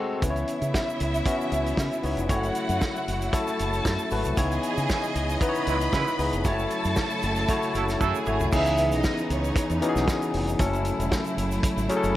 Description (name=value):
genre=disco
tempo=116 BPM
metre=4/4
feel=straight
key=C# minor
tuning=A4 = 442 Hz
part: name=barky tine electric piano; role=accompaniment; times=0.0-12.2 s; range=E3 to C#5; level=-28 LUFS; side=left 3 dB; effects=none
part: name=rich symphonic string section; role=sustained chords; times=0.0-12.2 s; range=B#2 to D#5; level=-33 LUFS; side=right 1 dB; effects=none
part: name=rich studio string section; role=second line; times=0.2-9.8 s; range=C#4 to B5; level=-30 LUFS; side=right 1 dB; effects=tape echo
part: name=fingered electric bass with an envelope filter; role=bass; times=0.2-12.1 s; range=E1 to C#3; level=-28 LUFS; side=equal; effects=none
part: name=warm soul drum kit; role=drums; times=0.2-12.2 s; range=crash cymbal, hi-hat, kick drum, snare drum, toms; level=-28 LUFS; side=right 1 dB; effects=gated reverb
part: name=egg shaker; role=percussion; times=0.2-12.1 s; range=none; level=-45 LUFS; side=right 14 dB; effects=none
part: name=clear horn section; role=stabs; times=5.7-8.2 s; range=F#3 to B4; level=-33 LUFS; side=right 7 dB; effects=tape echo
room=light reverb, small room ambience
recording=none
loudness=-23 LUFS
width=side -14 dB against mid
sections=0.2-8.5 A section; 8.5-12.2 B section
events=band accent 0.0; drum fill 8.0-8.5; tine electric piano fill 11.9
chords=0.2 C#m9; 2.3 F#m7; 4.4 C#m9; 6.5 F#m7; 8.5 C#m9; 10.6 F#m7